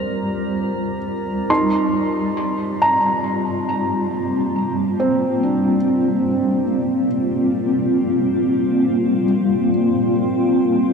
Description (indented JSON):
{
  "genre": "ambient",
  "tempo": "free time",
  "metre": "none",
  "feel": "none",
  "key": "G minor",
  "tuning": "A4 = 440 Hz",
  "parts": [
    { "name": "granular cloud pad", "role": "sustained chords", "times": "0.0-10.9 s", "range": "Eb2 to Bb4", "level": "-18 LUFS", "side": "equal", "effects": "built-in reverb" },
    { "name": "felt-muted upright piano", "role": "arpeggios", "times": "0.0-10.9 s", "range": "C4 to C6", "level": "-21 LUFS", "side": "right 1 dB", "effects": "tape echo" },
    { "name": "drifting glass-harmonics texture", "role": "texture", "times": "0.0-1.5 s", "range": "Bb4 to Bb5", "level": "-33 LUFS", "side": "right 2 dB", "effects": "chorus, built-in reverb" }
  ],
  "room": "wet huge ambient reverb, RT60 8.1 s",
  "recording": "dark, warm production",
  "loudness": "-17 LUFS",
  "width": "side -5 dB against mid",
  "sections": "0.0-1.5 A section; 1.5-10.9 B section",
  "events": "none",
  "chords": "0.0 Ebmaj7; 1.5 Gm7",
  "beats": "free time"
}